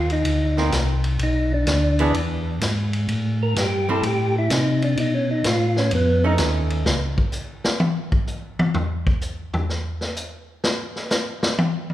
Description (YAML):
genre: soul jazz organ trio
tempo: 127 BPM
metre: 4/4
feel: swing 67% on 8ths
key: unclear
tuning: A4 = 440 Hz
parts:
  - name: percussive tonewheel organ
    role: melody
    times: 0.0-6.3 s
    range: B3 to Bb4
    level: -23 LUFS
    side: equal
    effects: slow rotary speaker
  - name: mellow tonewheel organ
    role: bass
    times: 0.0-7.2 s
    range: B1 to C3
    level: -22 LUFS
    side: equal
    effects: slow rotary speaker
  - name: vintage drum kit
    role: drums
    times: 0.1-11.9 s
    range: hi-hat, kick drum, ride cymbal, snare drum, toms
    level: -24 LUFS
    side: left 1 dB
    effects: none
  - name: archtop guitar, miked and amplified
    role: accompaniment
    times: 0.6-6.8 s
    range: Eb3 to Ab4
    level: -27 LUFS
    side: right 2 dB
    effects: none
room: moderate scoring stage reverb, RT60 1.9 s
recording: recorded in a church or concert hall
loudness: -19 LUFS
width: side -13 dB against mid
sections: 0.0-11.9 A section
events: tonewheel organ solo 0.0-11.9; drum solo 6.9-11.9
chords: 0.0 F7(no3) (rootless); 1.2 Bmadd11; 2.1 E; 3.1 Am7; 5.0 B9; 6.9 N.C.